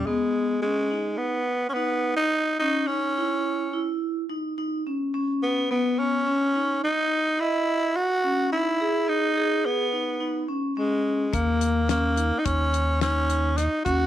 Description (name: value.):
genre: progressive instrumental, band music in an uneven meter.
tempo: 107 BPM.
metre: 5/4.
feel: straight.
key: G# minor.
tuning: A4 = 439 Hz.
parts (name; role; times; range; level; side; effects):
growling tenor saxophone; melody; 0.0-14.1 s; G#3 to F#4; -24 LUFS; equal; none.
warm sub bass; bass; 0.0, 11.3-14.1 s; D#2; -25 LUFS; equal; none.
vibraphone with medium hard mallets; arpeggios; 0.1-14.1 s; A#3 to D#5; -27 LUFS; left 1 dB; none.
damped 70s drum kit; drums; 11.3-14.0 s; hi-hat, kick drum, snare drum; -31 LUFS; left 4 dB; none.
room: small room ambience.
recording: 1960s-style stereo.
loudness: -22 LUFS.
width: side -12 dB against mid.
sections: 0.1-14.1 A section.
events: none.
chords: 0.1 G#m; 2.9 Badd9 (rootless); 5.7 Emaj7; 11.3 D#7(no3).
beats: | 0.07 0.64 1.20 1.77 2.33 | 2.89 3.46 4.02 4.58 5.15 | 5.71 6.27 6.83 7.40 7.96 | 8.52 9.08 9.65 10.21 10.77 | 11.33 11.89 12.46 13.02 13.58.